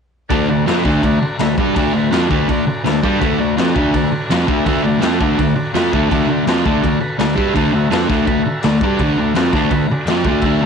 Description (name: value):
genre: garage rock duo or trio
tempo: 166 BPM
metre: 4/4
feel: straight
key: D mixolydian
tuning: A4 = 441 Hz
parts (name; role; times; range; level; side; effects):
- combo organ; sustained chords; 0.3-10.7 s; F#4 to E5; -25 LUFS; right 2 dB; none
- fuzz guitar; riff; 0.3-10.7 s; D3 to G4; -15 LUFS; equal; distortion
- growling picked electric bass; bass; 0.3-10.7 s; D2 to G2; -24 LUFS; right 1 dB; overdrive, tube saturation
- raw garage drum kit; drums; 0.3-10.5 s; crash cymbal, kick drum, snare drum; -21 LUFS; left 2 dB; none
room: moderate spring reverb, RT60 1.7 s, small room ambience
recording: 1960s-style stereo, faint mains hum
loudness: -13 LUFS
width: side -6 dB against mid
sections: 0.3-10.7 A section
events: none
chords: 0.3 D